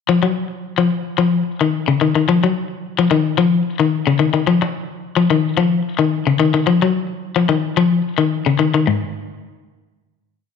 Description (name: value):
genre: afrobeat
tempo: 109 BPM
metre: 4/4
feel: straight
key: unclear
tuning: A4 = 440 Hz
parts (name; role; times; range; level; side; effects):
- electric guitar at the edge of break-up; solo; 0.1-9.0 s; G#2 to F#3; -15 LUFS; left 5 dB; none
room: wet echo chamber reverb, RT60 1.4 s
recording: none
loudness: -15 LUFS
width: side -6 dB against mid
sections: 0.1-8.9 groove; 8.9-10.6 final chord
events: none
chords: none